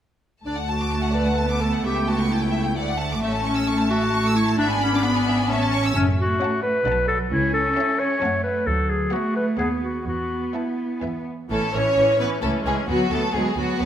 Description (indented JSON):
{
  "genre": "quick classical-period movement for symphony orchestra",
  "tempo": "131 BPM",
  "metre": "3/4",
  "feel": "straight",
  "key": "D major, A major from 6.0 s",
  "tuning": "A4 = 440 Hz",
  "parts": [
    { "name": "rich symphonic viola section", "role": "accompaniment", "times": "0.4-13.9 s", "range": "E3 to D4", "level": "-27 LUFS", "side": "right 1 dB", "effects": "none" },
    { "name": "rich chamber violin section", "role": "melody", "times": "0.5-13.9 s", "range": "F#4 to B5", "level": "-32 LUFS", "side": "left 5 dB", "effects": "none" },
    { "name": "clear chamber violin section", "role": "second line", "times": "0.5-13.9 s", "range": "F#4 to E6", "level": "-26 LUFS", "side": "equal", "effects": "none" },
    { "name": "warm clarinet", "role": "second line", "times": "0.5-11.3 s", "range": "A3 to C#5", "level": "-24 LUFS", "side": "left 2 dB", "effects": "none" },
    { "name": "rich chamber double bass section", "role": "bass", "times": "0.5-13.9 s", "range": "F#1 to F#2", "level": "-27 LUFS", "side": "right 2 dB", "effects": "none" },
    { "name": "rich chamber cello section", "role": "bass", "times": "0.9-13.9 s", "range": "F#3 to C#4", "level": "-28 LUFS", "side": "right 2 dB", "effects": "none" }
  ],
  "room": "wet scoring stage reverb, RT60 1.9 s",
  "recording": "none",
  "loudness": "-20 LUFS",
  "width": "side -10 dB against mid",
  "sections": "0.5-11.5 A section; 11.5-13.9 B section",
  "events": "none",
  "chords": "0.5 D; 1.9 A7/C#; 2.8 D; 3.2 A; 4.6 E7/G#; 5.5 A; 6.0 F#m; 6.9 Bm7; 7.3 A/C#; 8.2 F#m; 8.7 Bm/D; 9.6 B7/D#; 10.1 Esus4; 11.5 A; 12.4 C#m; 12.9 Bm/D"
}